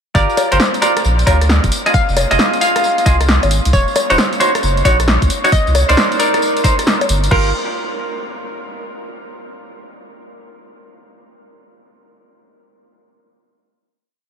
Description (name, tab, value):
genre	UK garage, two-step garage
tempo	134 BPM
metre	4/4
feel	swing 65% on 16ths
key	G phrygian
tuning	A4 = 441 Hz
part	semi-hollow electric guitar	stabs	0.1-7.5 s	Eb4 to F5	-18 LUFS	equal	analog delay
part	soft dub sub bass	bass	0.1-7.5 s	Eb1 to D2	-15 LUFS	equal	none
part	electronic kick drum	drums	0.1-7.4 s	none	-16 LUFS	equal	overdrive
part	punchy analog drum machine	drums	0.1-7.4 s	bongos, crash cymbal, hi-hat, rim click, snare drum, tambourine	-18 LUFS	left 1 dB	none
part	hollow square pluck	melody	0.2-7.5 s	Bb4 to F5	-22 LUFS	equal	chorus, analog delay
room	moderate huge ambient reverb, RT60 8.6 s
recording	dreamy mix soaked in reverb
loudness	-12 LUFS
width	side -7 dB against mid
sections	0.1-7.3 drop; 7.3-9.1 final chord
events	drop 0.1-7.3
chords	0.1 Gm7; 1.7 Fm7; 3.7 Ebm7; 5.5 Cm7; 7.3 Gm7